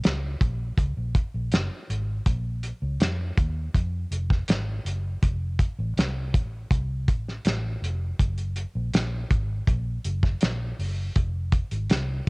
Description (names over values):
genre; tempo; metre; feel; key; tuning
indie pop, bedroom pop; 81 BPM; 4/4; straight; unclear; A4 = 441 Hz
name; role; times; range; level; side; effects
cloth-damped thuddy drum kit; drums; 0.0-12.3 s; hi-hat, kick drum, snare drum; -23 LUFS; equal; cassette tape
vintage muted fingered electric bass; bass; 0.1-12.2 s; F1 to F2; -28 LUFS; equal; none
room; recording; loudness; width
little or no reverb; home recording on cassette; -24 LUFS; side -31 dB against mid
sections
0.0-12.3 A section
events
none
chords
none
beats
0.04 0.78 1.52 | 2.26 3.00 3.75 4.49 | 5.23 5.97 6.71 7.45 | 8.19 8.93 9.68 10.42 | 11.16 11.90